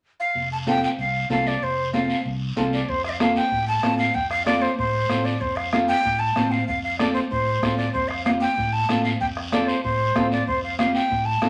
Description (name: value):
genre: latin, cumbia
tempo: 190 BPM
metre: 4/4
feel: straight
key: F major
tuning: A4 = 440 Hz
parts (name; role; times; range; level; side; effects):
- breathy jazz flute; melody; 0.2-11.5 s; C5 to A5; -26 LUFS; equal; none
- fingered electric bass; bass; 0.4-11.5 s; F1 to A2; -32 LUFS; equal; none
- congas; percussion; 0.4-11.5 s; none; -30 LUFS; equal; none
- guiro; percussion; 0.4-11.5 s; none; -37 LUFS; equal; none
- flamenco guitar; accompaniment; 0.7-11.5 s; C4 to C5; -28 LUFS; equal; none
- bombo; percussion; 2.9-11.5 s; none; -36 LUFS; equal; none
room: wet studio reverb, RT60 0.8 s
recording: none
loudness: -23 LUFS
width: mono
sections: 0.4-2.9 A section; 2.9-11.5 B section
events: none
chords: 0.4 F